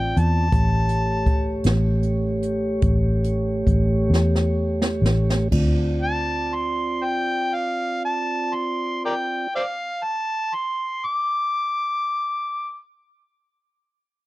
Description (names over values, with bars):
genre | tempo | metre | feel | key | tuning
slow blues | 40-56 BPM (dotted quarters) | 12/8 | straight | D minor | A4 = 440 Hz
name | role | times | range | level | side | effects
overdriven harmonica | melody | 0.0-12.8 s | Bb4 to D6 | -24 LUFS | equal | slapback echo
mellow tonewheel organ | sustained chords | 0.0-9.5 s | A3 to D5 | -26 LUFS | right 1 dB | slow rotary speaker
vintage muted fingered electric bass | bass | 0.0-9.5 s | A1 to E2 | -21 LUFS | equal | none
jazz brush drum kit | drums | 0.2-5.8 s | crash cymbal, hi-hat, kick drum, snare drum | -23 LUFS | equal | none
room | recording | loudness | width
small room reverb | dry, close 1970s-style studio recording | -20 LUFS | side -18 dB against mid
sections
0.0-5.5 A section; 5.5-11.5 B section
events
slowing down 0.0-5.5; drum fill 4.1-5.5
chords
0.0 Dm7; 0.5 A7; 5.5 Dm7